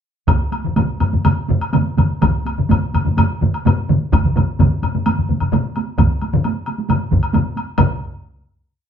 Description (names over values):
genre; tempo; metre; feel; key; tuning
japanese traditional, taiko drum ensemble; 123-139 BPM; 4/4; straight; none; none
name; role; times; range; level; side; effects
taiko ensemble; percussion; 0.3-8.0 s; none; -22 LUFS; right 4 dB; none
taiko ensemble; percussion; 0.3-8.2 s; none; -19 LUFS; left 2 dB; none
taiko ensemble; percussion; 0.3-8.2 s; none; -20 LUFS; right 2 dB; none
taiko ensemble; percussion; 0.3-8.0 s; none; -21 LUFS; equal; none
woodblock; percussion; 0.3-8.0 s; none; -26 LUFS; left 4 dB; none
room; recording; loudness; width
wet studio reverb, RT60 0.8 s; band playing live in one room; -15 LUFS; side -8 dB against mid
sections
0.3-7.8 A section; 7.8-8.9 final hit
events
speeding up 0.3-8.9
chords
none